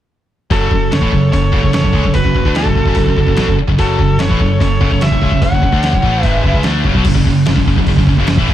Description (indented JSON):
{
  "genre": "heavy metal",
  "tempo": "147 BPM",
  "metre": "4/4",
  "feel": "straight",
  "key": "F# minor",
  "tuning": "A4 = 444 Hz",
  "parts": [
    { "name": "high-gain lead guitar", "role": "melody", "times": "0.5-6.6 s", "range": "A4 to F#5", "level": "-19 LUFS", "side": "equal", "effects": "distortion" },
    { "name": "high-gain lead guitar", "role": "second line", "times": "0.5-6.6 s", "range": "F#4 to C#5", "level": "-25 LUFS", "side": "right 2 dB", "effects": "distortion" },
    { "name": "heavy high-gain guitar", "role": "riff", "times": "0.5-8.5 s", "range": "F#2 to D4", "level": "-19 LUFS", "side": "left 10 dB", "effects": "distortion" },
    { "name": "scooped high-gain guitar", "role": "riff", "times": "0.5-8.5 s", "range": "F#2 to D4", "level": "-17 LUFS", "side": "right 6 dB", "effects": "distortion" },
    { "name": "picked electric bass", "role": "bass", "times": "0.5-8.5 s", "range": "F#1 to D2", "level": "-17 LUFS", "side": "equal", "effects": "none" },
    { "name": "trip hop sampler-style drum kit", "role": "drums", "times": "0.5-8.5 s", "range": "crash cymbal, hi-hat, kick drum, snare drum", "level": "-16 LUFS", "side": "equal", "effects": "none" }
  ],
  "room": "little or no reverb",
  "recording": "none",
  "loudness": "-11 LUFS",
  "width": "side -12 dB against mid",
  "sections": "0.5-7.1 A section; 7.1-8.5 B section",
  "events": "none",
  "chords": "0.5 F#m",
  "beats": "| 0.51 0.92 1.33 1.74 | 2.15 2.56 2.97 3.38 | 3.79 4.20 4.61 5.02 | 5.43 5.84 6.25 6.66 | 7.06 7.47 7.88 8.29"
}